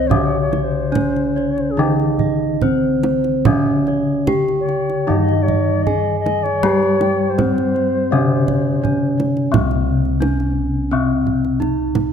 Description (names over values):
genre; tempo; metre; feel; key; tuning
Javanese gamelan; 71-87 BPM; 4/4; straight; C pelog; A4 = 440 Hz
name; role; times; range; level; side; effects
gamelan-type bronze metallophone; melody; 0.0-12.1 s; C4 to Ab4; -20 LUFS; right 1 dB; none
reedy bass bansuri; second line; 0.0-9.3 s; Ab4 to Eb5; -23 LUFS; left 5 dB; none
gamelan-type bronze metallophone; accompaniment; 0.0-12.1 s; C3 to G3; -22 LUFS; left 5 dB; none
gamelan-type bronze metallophone; arpeggios; 0.0-9.5 s; C5 to Ab5; -25 LUFS; right 6 dB; none
gamelan-type bossed gongs; bass; 0.0-12.1 s; C2 to G4; -22 LUFS; equal; none
kendang; percussion; 0.1-12.1 s; none; -22 LUFS; right 5 dB; none
room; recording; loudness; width
moderate concert hall reverb, RT60 2.1 s; close, detailed microphones; -15 LUFS; side -8 dB against mid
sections
0.0-9.5 A section; 9.5-12.1 B section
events
none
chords
none